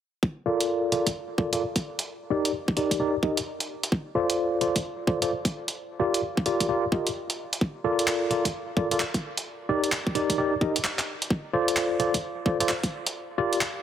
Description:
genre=UK garage, two-step garage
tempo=130 BPM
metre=4/4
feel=swing 63% on 16ths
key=unclear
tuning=A4 = 437 Hz
part: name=electronic kick drum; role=drums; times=0.2-12.9 s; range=none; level=-26 LUFS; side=equal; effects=high-pass filter on kick, small room ambience
part: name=tine electric piano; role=stabs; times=0.5-13.6 s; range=Eb4 to Eb5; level=-26 LUFS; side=equal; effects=overdrive, medium stereo tremolo, low-pass filter, dub echo
part: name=breakbeat sampler-style drum kit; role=drums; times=0.6-13.7 s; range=handclaps, hi-hat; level=-28 LUFS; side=right 1 dB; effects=small room ambience
room=moderate plate reverb, RT60 2.2 s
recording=heavily compressed radio sound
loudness=-24 LUFS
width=side -10 dB against mid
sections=0.2-13.8 A section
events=kick drops out 13.2-13.8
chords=0.2 Fadd11; 1.8 Ebmaj7; 3.7 F6; 5.8 Ebmaj9 (rootless); 7.6 Fadd11; 9.2 Ebmaj7; 11.1 F6; 13.2 Ebmaj9 (rootless)

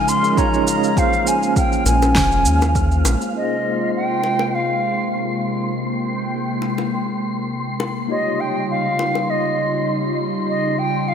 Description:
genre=sunset chillout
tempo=101 BPM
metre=4/4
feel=swing 54% on 16ths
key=Ab major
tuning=A4 = 438 Hz
part: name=mellow hollow silver concert flute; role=melody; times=0.0-11.1 s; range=Eb5 to C6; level=-21 LUFS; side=equal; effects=digital delay
part: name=tine electric piano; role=accompaniment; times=0.0-11.1 s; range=Ab3 to Db5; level=-26 LUFS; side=moving between left 5 dB and right 5 dB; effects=medium stereo tremolo, auto-pan, low-pass filter
part: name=airy breathy pad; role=sustained chords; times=0.0-11.1 s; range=C3 to G5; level=-23 LUFS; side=equal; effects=chorus
part: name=wind-like tuned noise texture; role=texture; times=0.0-11.1 s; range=F5 to C6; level=-30 LUFS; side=equal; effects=built-in reverb, ensemble chorus
part: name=electronic shaker and snare drum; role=drums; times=0.1-3.3 s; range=none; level=-25 LUFS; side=right 2 dB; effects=overdrive
part: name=electronic kick drum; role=drums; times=0.4-2.9 s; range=none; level=-22 LUFS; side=equal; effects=overdrive
part: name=round analog bass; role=bass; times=1.9-3.2 s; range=F1 to Eb2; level=-17 LUFS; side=equal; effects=none
part: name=bongos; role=percussion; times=1.9-9.3 s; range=none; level=-29 LUFS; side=left 5 dB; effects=none
room=moderate lush hall reverb, RT60 2.4 s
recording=bright 1980s-style digital production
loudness=-17 LUFS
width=side -8 dB against mid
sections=0.0-3.3 A section; 3.3-11.1 B section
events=filter sweep on tine electric piano 0.0-3.3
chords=0.0 Eb9sus4; 1.0 Bbm9; 3.3 Ab69; 8.1 Eb9

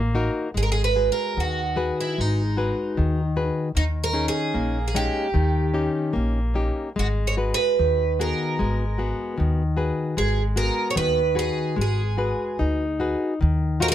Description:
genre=fado-style ballad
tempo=75 BPM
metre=2/4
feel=rubato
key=G# minor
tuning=A4 = 440 Hz
part: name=flamenco guitar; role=accompaniment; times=0.0-13.9 s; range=D#3 to B4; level=-25 LUFS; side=left 3 dB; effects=none
part: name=upright bass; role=bass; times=0.0-13.9 s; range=G#1 to D#2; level=-24 LUFS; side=equal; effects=none
part: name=picked twelve-string acoustic guitar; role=melody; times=0.6-13.9 s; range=D#4 to C#5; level=-25 LUFS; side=right 4 dB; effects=none
room=little or no reverb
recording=close, detailed microphones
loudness=-21 LUFS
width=side -11 dB against mid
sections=0.6-13.4 A section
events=none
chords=0.0 Ebm; 0.6 G#m7; 3.8 D#7sus4; 5.3 D#7; 7.0 G#m7; 13.4 Ebmadd9

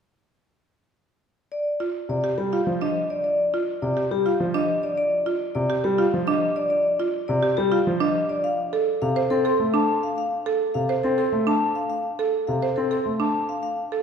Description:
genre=classical, minimalist pattern music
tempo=104 BPM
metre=3/4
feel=straight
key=C dorian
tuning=A4 = 440 Hz
part: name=vibraphone with medium mallets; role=melody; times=1.5-13.8 s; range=G4 to C6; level=-24 LUFS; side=left 3 dB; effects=none
part: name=buzzing marimba with medium hard mallets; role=arpeggios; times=1.8-14.0 s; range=D4 to C5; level=-26 LUFS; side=right 5 dB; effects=none
part: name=warm concert grand piano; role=accompaniment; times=2.1-13.2 s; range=C3 to C4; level=-27 LUFS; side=left 1 dB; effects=none
room=wet concert hall reverb, RT60 2.2 s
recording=recorded in a church or concert hall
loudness=-21 LUFS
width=side -7 dB against mid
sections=1.5-14.0 A section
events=none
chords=1.5 Csus2; 8.4 F/C

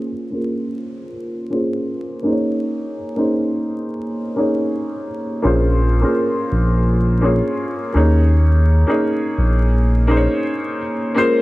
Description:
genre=lo-fi hip hop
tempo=84 BPM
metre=4/4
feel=swing 63% on 16ths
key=unclear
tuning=A4 = 440 Hz
part: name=felt-muted upright piano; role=accompaniment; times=0.0-11.4 s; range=Bb3 to Db5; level=-19 LUFS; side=equal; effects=cassette tape, low-pass filter
part: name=smooth gliding synth bass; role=bass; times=5.5-10.3 s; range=Bb1 to Eb2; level=-14 LUFS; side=equal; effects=none
part: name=vibraphone with soft mallets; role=melody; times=11.2-11.4 s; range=Bb4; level=-17 LUFS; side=left 4 dB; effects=low-pass filter
part: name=warm studio string section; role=sustained chords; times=11.2-11.4 s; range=Ab3 to Db4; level=-34 LUFS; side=right 2 dB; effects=low-pass filter
room=moderate studio reverb, RT60 0.5 s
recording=dark, warm production, vinyl crackle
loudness=-16 LUFS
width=side -18 dB against mid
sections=0.0-11.2 A section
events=filter sweep on felt piano 0.0-11.2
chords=0.0 Bbm9; 2.2 Eb7sus4; 5.4 Bbm9; 7.9 Eb7sus4

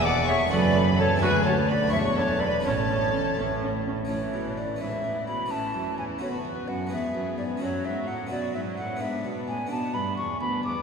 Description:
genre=classical, baroque-style concerto movement with solo episodes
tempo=85 BPM (dotted quarters)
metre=6/8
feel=straight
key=A major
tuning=A4 = 439 Hz
part: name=hollow concert flute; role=melody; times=0.0-10.8 s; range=B4 to D6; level=-28 LUFS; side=equal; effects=none
part: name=rich chamber violin section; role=melody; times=0.0-10.8 s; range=A4 to D6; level=-36 LUFS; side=left 4 dB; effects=none
part: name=rich chamber violin section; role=second line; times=0.0-10.8 s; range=D4 to D5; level=-34 LUFS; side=left 2 dB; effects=none
part: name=harpsichord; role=accompaniment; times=0.0-10.8 s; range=D2 to B4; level=-34 LUFS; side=equal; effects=none
part: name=rich chamber cello section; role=bass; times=0.0-10.7 s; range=D2 to B2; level=-30 LUFS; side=right 3 dB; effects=none
part: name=rich chamber double bass section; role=bass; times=0.0-4.0 s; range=E1 to D2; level=-31 LUFS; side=right 1 dB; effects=none
part: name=rich chamber viola section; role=accompaniment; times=0.1-10.8 s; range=E3 to A4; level=-34 LUFS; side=left 1 dB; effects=none
room=wet cathedral reverb, RT60 6.4 s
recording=recorded in a church or concert hall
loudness=-24 LUFS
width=side -6 dB against mid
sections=0.0-4.1 A section; 4.1-10.8 B section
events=none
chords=0.0 E7; 0.5 F#m; 1.2 Bm/D; 1.9 E7; 2.6 A; 4.8 E/G#; 5.5 A; 6.2 Bm/D; 6.9 E; 7.6 F#m; 8.3 B5; 9.0 E7/G#; 9.7 Bm

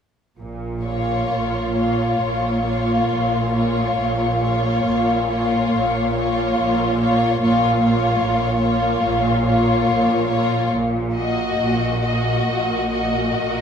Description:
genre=classical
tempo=60-75 BPM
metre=4/4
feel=rubato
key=Bb minor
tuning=A4 = 440 Hz
part: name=clear studio cello section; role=bass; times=0.4-13.6 s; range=Bb2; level=-25 LUFS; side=right 2 dB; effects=none
part: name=dark studio double bass section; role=bass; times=0.4-13.6 s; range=Bb1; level=-25 LUFS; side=right 2 dB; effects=none
part: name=rich chamber violin section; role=melody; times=0.8-13.6 s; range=Db5 to Eb5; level=-26 LUFS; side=left 3 dB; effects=none
part: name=warm studio violin section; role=second line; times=0.8-13.6 s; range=F4 to Gb4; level=-22 LUFS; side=left 2 dB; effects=none
part: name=warm studio viola section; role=accompaniment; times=0.8-13.6 s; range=Bb3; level=-23 LUFS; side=right 1 dB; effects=none
room=wet recital hall reverb, RT60 1.4 s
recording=recorded in a church or concert hall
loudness=-17 LUFS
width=side -7 dB against mid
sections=0.4-13.6 A section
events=none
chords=0.4 Bbm

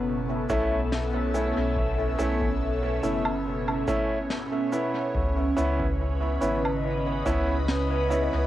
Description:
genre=ambient dub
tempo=71 BPM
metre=4/4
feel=swing 54% on 16ths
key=unclear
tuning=A4 = 438 Hz
part: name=airy breathy pad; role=sustained chords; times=0.0-8.5 s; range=B2 to E5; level=-28 LUFS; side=equal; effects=chorus, phaser, cassette tape
part: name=soft dub sub bass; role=bass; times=0.0-8.5 s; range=F#1 to C#2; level=-29 LUFS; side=equal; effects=none
part: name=bright upright piano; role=stabs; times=0.5-8.5 s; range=A3 to E4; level=-29 LUFS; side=right 1 dB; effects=vintage 12-bit sampler grit, cassette tape, dub echo
part: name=electronic kick drum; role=drums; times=0.5-7.4 s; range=none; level=-32 LUFS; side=equal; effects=overdrive, cassette tape
part: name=shaker, snare drum and woodblock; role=drums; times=0.5-8.3 s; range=none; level=-35 LUFS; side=equal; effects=cassette tape, dub echo
room=light reverb, small room ambience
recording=home recording on cassette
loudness=-24 LUFS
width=side -13 dB against mid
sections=0.0-8.5 A section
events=none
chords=0.0 B9sus4; 5.1 C#m7

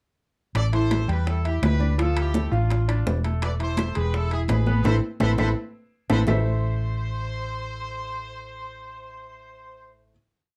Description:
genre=latin, salsa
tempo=168 BPM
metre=4/4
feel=straight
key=A minor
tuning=A4 = 438 Hz
part: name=hollow-body short-scale fingered electric bass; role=bass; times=0.5-10.1 s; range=E1 to E2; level=-26 LUFS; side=equal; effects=none
part: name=bright horn section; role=melody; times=0.6-9.9 s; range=D4 to D5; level=-35 LUFS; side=equal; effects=none
part: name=bongos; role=percussion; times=0.6-6.4 s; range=none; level=-36 LUFS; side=equal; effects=none
part: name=claves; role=percussion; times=0.6-6.4 s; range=none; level=-42 LUFS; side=equal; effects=none
part: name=congas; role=percussion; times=0.6-6.4 s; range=none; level=-32 LUFS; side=equal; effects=none
part: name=timbales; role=percussion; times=0.6-6.4 s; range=none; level=-34 LUFS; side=equal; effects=none
part: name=bright grand piano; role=accompaniment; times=0.7-10.1 s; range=E3 to F5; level=-31 LUFS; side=equal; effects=none
room=moderate studio ambience, RT60 0.5 s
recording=dark, warm production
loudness=-24 LUFS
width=mono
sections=0.6-6.3 A section; 6.3-9.1 final chord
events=drum fill 4.9-6.3; band accent 4.9-6.3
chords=0.6 Am7; 2.0 Dm; 3.4 Esus4; 4.1 E; 4.9 Amadd9

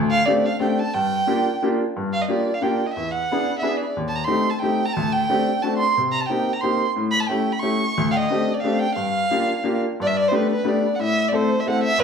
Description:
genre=musette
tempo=179 BPM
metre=3/4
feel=swing 53% on 8ths, rubato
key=G minor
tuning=A4 = 438 Hz
part: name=clear upright piano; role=accompaniment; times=0.0-12.0 s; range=D2 to A4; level=-22 LUFS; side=left 2 dB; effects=none
part: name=dark violin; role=melody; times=0.1-12.0 s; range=B4 to C#6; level=-22 LUFS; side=right 3 dB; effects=none
room=wet large studio reverb, RT60 0.8 s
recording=band playing live in one room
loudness=-19 LUFS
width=side -6 dB against mid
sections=0.0-2.0 A section; 2.0-10.0 A section; 10.0-12.0 B section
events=none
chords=0.0 D7sus4; 0.9 Gm7; 3.0 E7; 4.0 Am7b5/Eb; 5.0 D7sus4; 5.6 D7; 6.0 Cm7; 7.0 A7; 8.0 D7sus4; 9.0 Gm7; 10.0 Gadd9; 11.0 Am

